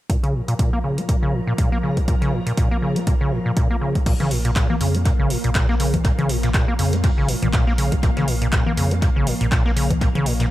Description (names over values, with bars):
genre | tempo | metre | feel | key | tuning
acid house | 121 BPM | 4/4 | swing 56% on 16ths | Bb minor | A4 = 444 Hz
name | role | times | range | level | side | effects
string machine, full ensemble | sustained chords | 0.1-10.5 s | F3 to Bb5 | -28 LUFS | equal | ensemble chorus, sidechain pumping
acid bass, square | riff | 0.1-10.5 s | Bb2 to Bb3 | -22 LUFS | equal | overdrive, sidechain pumping, tape echo
electronic kick drum | drums | 0.1-10.1 s | none | -20 LUFS | equal | overdrive, studio reverb
punchy analog drum machine | drums | 0.1-10.5 s | congas, crash cymbal, handclaps, hi-hat | -27 LUFS | left 2 dB | overdrive, studio reverb, analog delay
warm sub bass | bass | 4.1-10.5 s | Ab1 to F2 | -24 LUFS | equal | sidechain pumping
dusty soul sampler-style drum kit | drums | 4.1-10.5 s | hi-hat, snare drum | -36 LUFS | right 1 dB | high-pass filter on hats, studio reverb, high-pass filter on snare, analog delay
room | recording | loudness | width
little or no reverb | echo-heavy mix | -17 LUFS | side -15 dB against mid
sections
0.1-4.1 A section; 4.1-10.5 B section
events
filter sweep on acid bass 0.1-4.1, 4.1-10.5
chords
0.1 Bb5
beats
| 0.10 0.59 1.09 1.58 | 2.08 2.58 3.07 3.57 | 4.06 4.56 5.05 5.55 | 6.05 6.54 7.04 7.54 | 8.03 8.53 9.02 9.52 | 10.01